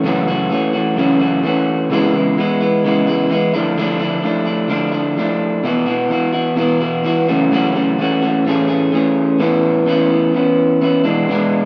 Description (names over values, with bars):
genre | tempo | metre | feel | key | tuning
rock | 128 BPM | 4/4 | straight | A major | A4 = 439 Hz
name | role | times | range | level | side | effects
electric guitar through a small old amp | solo | 0.0-11.7 s | E2 to G#4 | -16 LUFS | equal | none
room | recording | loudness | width
moderate lush hall reverb, RT60 3.0 s | rough home demo mix | -16 LUFS | mono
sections
0.0-9.4 A section; 9.4-11.7 B section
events
none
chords
0.0 F#m7; 1.9 C#m7; 3.5 Dmadd9; 5.6 Esus2; 7.3 F#m7; 8.4 Amaj7; 9.4 Aadd9; 11.0 E7